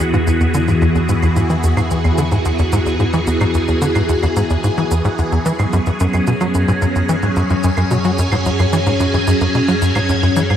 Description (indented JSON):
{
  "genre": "ambient, sequencer-driven space music",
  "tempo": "110 BPM",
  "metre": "4/4",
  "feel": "straight",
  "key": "unclear",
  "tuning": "A4 = 440 Hz",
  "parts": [
    { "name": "phased string machine", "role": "sustained chords", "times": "0.0-10.6 s", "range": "E3 to G#5", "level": "-17 LUFS", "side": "equal", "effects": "ensemble chorus, phaser, shimmer reverb" },
    { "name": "tight sequencer bass", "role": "riff", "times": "0.0-10.6 s", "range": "E2 to F#3", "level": "-16 LUFS", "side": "equal", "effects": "analog chorus, ping-pong delay" },
    { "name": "analog drone", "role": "bass", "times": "0.0-10.6 s", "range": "E2 to F#2", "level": "-23 LUFS", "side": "equal", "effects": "none" },
    { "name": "shaker and claves", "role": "percussion", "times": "0.0-10.6 s", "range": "none", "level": "-31 LUFS", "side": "right 4 dB", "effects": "ping-pong delay" }
  ],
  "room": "moderate plate reverb, RT60 3.1 s",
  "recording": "none",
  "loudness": "-14 LUFS",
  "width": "side -9 dB against mid",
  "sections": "0.0-10.6 A section",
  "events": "none",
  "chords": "0.0 E; 5.5 F#sus2",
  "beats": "0.00 0.55 | 1.09 1.64 2.18 2.73 | 3.27 3.82 4.36 4.91 | 5.45 6.00 6.54 7.09 | 7.64 8.18 8.73 9.27 | 9.82 10.36"
}